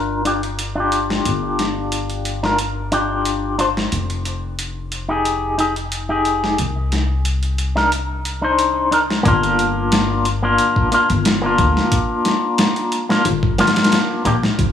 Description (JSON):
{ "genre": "trip hop", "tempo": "90 BPM", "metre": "4/4", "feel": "swing 53% on 16ths", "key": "G phrygian", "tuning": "A4 = 445 Hz", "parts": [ { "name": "electric guitar with an envelope filter", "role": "accompaniment", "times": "0.0-14.4 s", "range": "Bb3 to C5", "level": "-18 LUFS", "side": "left 2 dB", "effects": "tremolo, low-pass filter, tape echo" }, { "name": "upright bass", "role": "bass", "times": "0.0-14.7 s", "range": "F1 to D2", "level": "-22 LUFS", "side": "left 1 dB", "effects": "none" }, { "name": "boom bap sampler-style drum kit", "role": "drums", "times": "0.3-14.7 s", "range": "hi-hat, kick drum, snare drum", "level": "-20 LUFS", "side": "equal", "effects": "overdrive, high-pass filter on hats, high-pass filter on snare, high-pass filter on kick, high-pass filter on room" } ], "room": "light reverb, digital ambience", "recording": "studio ambience", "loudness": "-16 LUFS", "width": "side -9 dB against mid", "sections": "0.0-9.3 A section; 9.3-14.7 B section", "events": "filter sweep on clean electric guitar 0.0-9.3", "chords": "0.0 G7(no3); 3.9 Fm9; 6.6 Cm; 9.3 Gm7", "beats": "0.59 | 1.25 1.92 2.59 3.25 | 3.92 4.59 5.25 5.92 | 6.59 7.25 7.92 8.59 | 9.26 9.92 10.59 11.26 | 11.92 12.59 13.26 13.92 | 14.59" }